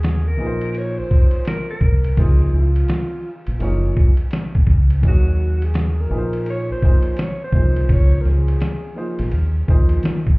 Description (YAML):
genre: hip hop, jazz-hop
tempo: 84 BPM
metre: 4/4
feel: swing 63% on 16ths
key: unclear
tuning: A4 = 441 Hz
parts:
  - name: breathy alto saxophone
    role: melody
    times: 0.0-9.3 s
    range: F4 to Db5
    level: -29 LUFS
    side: equal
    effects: tape echo
  - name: deep dub fingered electric bass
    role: bass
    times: 0.0-10.3 s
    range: Gb1 to Eb3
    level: -18 LUFS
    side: equal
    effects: none
  - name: trip hop sampler-style drum kit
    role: drums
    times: 0.0-10.4 s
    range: hi-hat, kick drum, ride cymbal, snare drum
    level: -17 LUFS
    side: equal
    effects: none
  - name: warm grand piano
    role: accompaniment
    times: 0.4-10.1 s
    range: F3 to Db5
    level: -27 LUFS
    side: equal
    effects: none
room: digital ambience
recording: heard muffled through a wall, club reverb, EQ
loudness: -15 LUFS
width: side -26 dB against mid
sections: 0.0-10.4 A section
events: none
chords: 0.4 Bb5; 2.2 Db69; 3.6 Gbmaj9; 5.0 Ebm7; 6.1 Bb5; 7.9 Db69; 9.3 Ebsus2